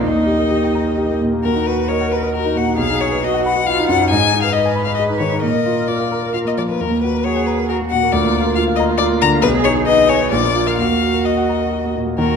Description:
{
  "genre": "quick classical-period movement for piano trio",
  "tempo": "127-140 BPM",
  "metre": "3/4",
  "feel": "rubato",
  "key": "Eb minor",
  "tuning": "A4 = 440 Hz",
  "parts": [
    { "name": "clear violin", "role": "melody", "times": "0.0-12.4 s", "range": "Bb4 to Bb5", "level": "-19 LUFS", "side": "left 9 dB", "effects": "none" },
    { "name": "rich cello", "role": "second line", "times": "0.0-12.4 s", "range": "Eb4 to Cb5", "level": "-22 LUFS", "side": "right 5 dB", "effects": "none" },
    { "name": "clear concert grand piano", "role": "accompaniment", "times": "0.0-12.4 s", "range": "Bb1 to B5", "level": "-18 LUFS", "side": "equal", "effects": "none" }
  ],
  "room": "wet recital hall reverb, RT60 1.5 s",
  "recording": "dark, warm production",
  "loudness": "-14 LUFS",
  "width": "side -6 dB against mid",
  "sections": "0.0-1.4 A section; 1.4-12.2 A section",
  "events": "none",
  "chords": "0.0 Eb; 1.4 Ebm; 2.8 B; 4.1 Abm; 5.4 Bb; 6.8 Ebm; 8.1 Bb/D; 9.4 Abm/Cb; 10.3 Bb; 10.8 Ebm"
}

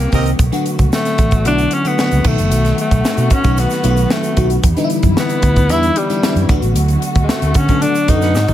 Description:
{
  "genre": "polished 1980s jazz-funk pop",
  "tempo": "113 BPM",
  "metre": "4/4",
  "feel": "straight",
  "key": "B minor",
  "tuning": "A4 = 440 Hz",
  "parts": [
    { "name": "clear alto saxophone", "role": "melody", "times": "0.0-8.5 s", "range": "G3 to E4", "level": "-19 LUFS", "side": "left 1 dB", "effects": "digital delay" },
    { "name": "dark studio string section", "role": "sustained chords", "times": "0.0-8.5 s", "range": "D3 to G4", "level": "-26 LUFS", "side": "equal", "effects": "none" },
    { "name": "fingered electric bass", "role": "bass", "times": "0.0-8.5 s", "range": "F#1 to D3", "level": "-16 LUFS", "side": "right 1 dB", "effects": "none" },
    { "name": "tight funk drum kit", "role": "drums", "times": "0.0-8.5 s", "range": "crash cymbal, hi-hat, kick drum, snare drum, toms", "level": "-17 LUFS", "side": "equal", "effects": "gated reverb" },
    { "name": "tube shaker", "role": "percussion", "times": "0.0-8.5 s", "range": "none", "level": "-33 LUFS", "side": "right 12 dB", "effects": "none" },
    { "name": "warm horn section", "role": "second line", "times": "0.1-0.3, 8.2-8.3 s", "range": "C4 to F#5", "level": "-24 LUFS", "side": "right 6 dB", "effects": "none" },
    { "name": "FM electric piano", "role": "accompaniment", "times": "0.1-8.4 s", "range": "D3 to A4", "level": "-19 LUFS", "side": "left 2 dB", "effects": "phaser, ensemble chorus" }
  ],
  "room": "small room ambience",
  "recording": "none",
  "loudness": "-12 LUFS",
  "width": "side -12 dB against mid",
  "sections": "0.0-8.5 A section",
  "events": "band accent 0.0-0.4, 6.8-8.5; drum fill 8.3",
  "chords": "0.4 Bm7; 2.2 B7; 4.6 Em7; 6.5 D6"
}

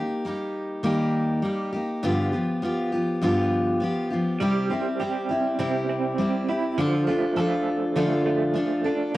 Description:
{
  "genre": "acoustic folk duo or small band",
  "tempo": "101 BPM",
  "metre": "4/4",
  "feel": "straight",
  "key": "unclear",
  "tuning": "A4 = 440 Hz",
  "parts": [
    { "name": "picked steel-string acoustic guitar", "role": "accompaniment", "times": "0.0-9.2 s", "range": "G2 to A4", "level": "-23 LUFS", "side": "left 1 dB", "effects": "none" },
    { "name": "electric guitar through a small old amp", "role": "arpeggios", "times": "4.4-9.2 s", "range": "F3 to A4", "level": "-28 LUFS", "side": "right 4 dB", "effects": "tremolo" }
  ],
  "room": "wet studio reverb, RT60 0.6 s",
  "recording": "home recording on cassette",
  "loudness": "-22 LUFS",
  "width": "side -16 dB against mid",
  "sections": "0.0-9.2 A section",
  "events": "none",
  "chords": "0.0 Eb; 2.0 G7; 4.4 C; 6.8 Dm"
}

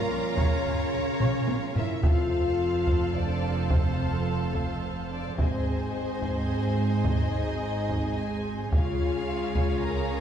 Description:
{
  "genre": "cinematic, epic orchestral film score",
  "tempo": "108 BPM",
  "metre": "3/4",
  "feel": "straight",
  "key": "unclear",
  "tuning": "A4 = 440 Hz",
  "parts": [
    { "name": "warm symphonic violin section", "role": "melody", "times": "0.0-10.2 s", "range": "A4 to Bb5", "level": "-37 LUFS", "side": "left 5 dB", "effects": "none" },
    { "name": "rich symphonic violin section", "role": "second line", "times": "0.0-10.2 s", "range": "Eb5 to Bb5", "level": "-39 LUFS", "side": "left 1 dB", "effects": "none" },
    { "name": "clear symphonic string section", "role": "sustained chords", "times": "0.0-10.2 s", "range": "C4 to Ab5", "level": "-36 LUFS", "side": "right 1 dB", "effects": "none" },
    { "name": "mellow French horn section", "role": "sustained chords", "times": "0.0-10.2 s", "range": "A3 to Bb4", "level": "-32 LUFS", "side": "left 2 dB", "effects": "none" },
    { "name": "warm trombone section", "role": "sustained chords", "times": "0.0-1.8 s", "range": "Bb2 to Db3", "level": "-36 LUFS", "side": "right 4 dB", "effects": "none" },
    { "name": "clear symphonic cello section", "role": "bass", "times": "0.0-10.2 s", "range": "F2 to F3", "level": "-35 LUFS", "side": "right 3 dB", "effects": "none" },
    { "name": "rich symphonic viola section", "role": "accompaniment", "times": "0.1-10.2 s", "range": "Ab4 to Db5", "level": "-38 LUFS", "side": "equal", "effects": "none" },
    { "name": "rich studio double bass section", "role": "bass", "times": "0.1-10.2 s", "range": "F1 to Db2", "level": "-32 LUFS", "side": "right 2 dB", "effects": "none" },
    { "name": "taiko ensemble", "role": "drums", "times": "0.4-10.1 s", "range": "none", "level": "-28 LUFS", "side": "equal", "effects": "none" }
  ],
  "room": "wet scoring stage reverb, RT60 1.5 s",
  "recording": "heard from further back in the room",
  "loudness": "-24 LUFS",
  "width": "side -9 dB against mid",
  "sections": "0.0-2.0 A section; 2.0-10.2 B section",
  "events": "drum fill 1.2-2.0",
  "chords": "0.0 Bbm; 2.0 F; 5.4 Ab; 8.7 Db"
}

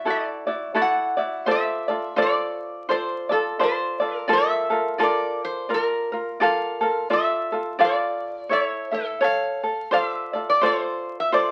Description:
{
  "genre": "Hawaiian",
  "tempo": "85 BPM",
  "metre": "4/4",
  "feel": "swing 59% on 8ths",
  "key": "D minor",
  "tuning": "A4 = 439 Hz",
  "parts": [
    { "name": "metal-body resonator slide guitar", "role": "melody", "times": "0.0-11.5 s", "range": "A4 to F#5", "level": "-27 LUFS", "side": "equal", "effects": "none" },
    { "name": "ukulele", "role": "accompaniment", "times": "0.0-11.5 s", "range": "E4 to F5", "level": "-25 LUFS", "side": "equal", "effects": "none" }
  ],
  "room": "moderate small room reverb, RT60 0.5 s",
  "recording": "very old 78 rpm record, vinyl crackle",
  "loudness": "-23 LUFS",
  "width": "mono",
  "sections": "0.0-1.5 A section; 1.5-11.5 B section",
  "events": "none",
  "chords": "0.0 Dadd9; 1.5 Dm7; 4.3 Bbmaj7; 7.1 Dm; 8.5 A; 9.9 Dm7"
}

